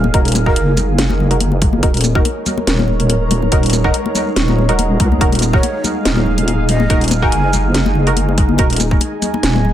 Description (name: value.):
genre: deep dubstep.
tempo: 142 BPM.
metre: 4/4.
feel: swing 54% on 16ths, half-time.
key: Eb minor.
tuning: A4 = 440 Hz.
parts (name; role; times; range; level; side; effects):
dark analog pad; sustained chords; 0.0-9.7 s; Eb4 to Ab5; -22 LUFS; right 2 dB; chorus, phaser, vintage 12-bit sampler grit.
deep soft wobble bass; bass; 0.0-9.7 s; Eb1 to Db2; -16 LUFS; equal; chorus.
congas; percussion; 0.0-9.7 s; none; -22 LUFS; left 5 dB; dub echo.
flickering grainy texture; texture; 0.0-9.7 s; Ab3 to Bb4; -25 LUFS; equal; built-in reverb.
filtered dub chord stab; stabs; 0.1-8.7 s; Eb4 to Bb4; -22 LUFS; right 1 dB; chorus, dub echo.
electronic kick drum; drums; 0.1-9.0 s; none; -15 LUFS; equal; none.
garage drum kit; drums; 0.1-9.5 s; hi-hat, shaker, snare drum; -20 LUFS; equal; none.
breathy mellow ney; melody; 0.5-0.8, 5.5-7.6 s; Bb4 to Ab5; -25 LUFS; equal; vintage 12-bit sampler grit, dub echo.
room: light reverb.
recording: none.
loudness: -12 LUFS.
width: side -11 dB against mid.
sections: 0.0-9.7 A section.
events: none.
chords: 0.0 Ebm.